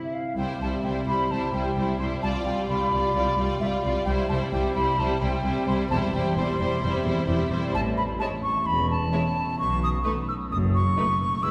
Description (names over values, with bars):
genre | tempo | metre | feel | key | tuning
cinematic, playful, whimsical film cue | 130 BPM | 4/4 | straight | C major | A4 = 440 Hz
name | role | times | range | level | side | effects
rich chamber violin section | melody | 0.0-11.5 s | B4 to D5 | -37 LUFS | equal | none
silver concert flute | second line | 0.0-11.5 s | E5 to E6 | -30 LUFS | equal | none
warm chamber violin section | second line | 0.0-11.5 s | D#4 to F4 | -37 LUFS | equal | none
warm studio viola section | accompaniment | 0.0-11.5 s | G3 to A3 | -34 LUFS | equal | none
concert harp | arpeggios | 0.0-11.5 s | A2 to A4 | -35 LUFS | equal | none
rich chamber cello section | bass | 0.0-11.5 s | C2 to E4 | -33 LUFS | equal | none
warm chamber double bass section | bass | 0.4-11.5 s | E1 to C#2 | -33 LUFS | equal | none
room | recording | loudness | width
wet cathedral reverb, RT60 3.9 s | recorded in a church or concert hall | -25 LUFS | mono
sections
0.4-11.5 A section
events
none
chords
0.4 C; 2.2 G7/C; 4.1 C; 5.9 C/E; 7.7 A; 9.6 B9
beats
| 0.37 0.84 1.30 1.76 | 2.22 2.69 3.15 3.61 | 4.07 4.52 4.98 5.44 | 5.90 6.37 6.83 7.29 | 7.74 8.20 8.67 9.13 | 9.59 10.05 10.51 10.97 | 11.44